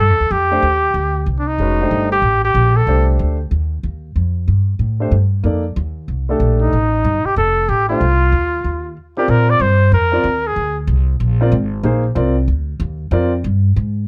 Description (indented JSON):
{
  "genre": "modal jazz",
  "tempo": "187 BPM",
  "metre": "4/4",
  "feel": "swing 62% on 8ths",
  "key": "F mixolydian, Bb mixolydian from 9.3 s",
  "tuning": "A4 = 440 Hz",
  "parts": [
    { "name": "warm trumpet", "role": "melody", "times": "0.0-3.1, 6.6-10.8 s", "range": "D4 to D5", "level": "-19 LUFS", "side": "equal", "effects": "plate reverb" },
    { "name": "upright bass", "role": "bass", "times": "0.0-14.1 s", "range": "F1 to Bb2", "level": "-18 LUFS", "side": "equal", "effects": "none" },
    { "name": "warm concert grand piano", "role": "accompaniment", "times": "0.5-13.3 s", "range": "Ab3 to D5", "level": "-22 LUFS", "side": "equal", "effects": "none" }
  ],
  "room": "light reverb",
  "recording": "none",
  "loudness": "-16 LUFS",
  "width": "mono",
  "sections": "0.0-9.3 A section; 9.3-14.1 B section",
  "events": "none",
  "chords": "0.0 F13; 9.3 Bb9"
}